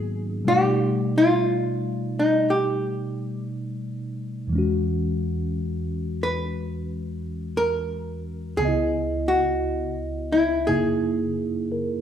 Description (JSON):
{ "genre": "jazz ballad", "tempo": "59 BPM", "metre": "4/4", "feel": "swing 68% on 8ths", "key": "unclear", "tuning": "A4 = 442 Hz", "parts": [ { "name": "archtop guitar, miked and amplified", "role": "melody", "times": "0.0-11.7 s", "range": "D#4 to B4", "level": "-22 LUFS", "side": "equal", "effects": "none" }, { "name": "mellow tine electric piano", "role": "accompaniment", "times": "0.0-12.0 s", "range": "C#2 to D#5", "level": "-25 LUFS", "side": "equal", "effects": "slow stereo tremolo" } ], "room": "wet large studio reverb, RT60 1.2 s", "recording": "band playing live in one room", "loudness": "-22 LUFS", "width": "side -9 dB against mid", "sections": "0.0-12.0 A section", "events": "none", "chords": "0.5 B7alt; 4.5 E69; 8.6 C#m9; 10.7 F#13" }